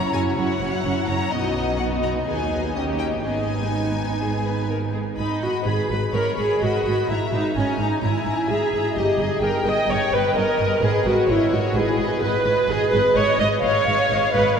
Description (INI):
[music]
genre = quick classical-period movement for string orchestra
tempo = 128 BPM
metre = 4/4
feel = straight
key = G# minor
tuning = A4 = 441 Hz
[part]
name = rich studio violin section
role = melody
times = 0.0-14.6 s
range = D5 to B5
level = -30 LUFS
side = left 5 dB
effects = none
[part]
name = warm studio violin section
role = second line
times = 0.0-14.6 s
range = D#4 to G#5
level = -27 LUFS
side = left 2 dB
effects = none
[part]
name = rich studio viola section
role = accompaniment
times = 0.0-14.6 s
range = B3 to D#5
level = -21 LUFS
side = right 1 dB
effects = none
[part]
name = rich studio cello section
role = bass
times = 0.1-14.6 s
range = D#2 to B2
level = -28 LUFS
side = right 2 dB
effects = none
[part]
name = warm studio double bass section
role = bass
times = 0.1-14.4 s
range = F#1 to D#2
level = -28 LUFS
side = right 3 dB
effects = none
[sound]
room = wet cathedral reverb, RT60 5.7 s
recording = none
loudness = -19 LUFS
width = side -7 dB against mid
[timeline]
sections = 0.0-5.2 A section; 5.2-14.6 A section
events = none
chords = 0.0 F#7; 1.3 B; 2.3 G#m/D#; 2.7 D#7; 3.2 G#m; 7.1 C#m69/G#; 9.0 D#/G; 10.8 G#m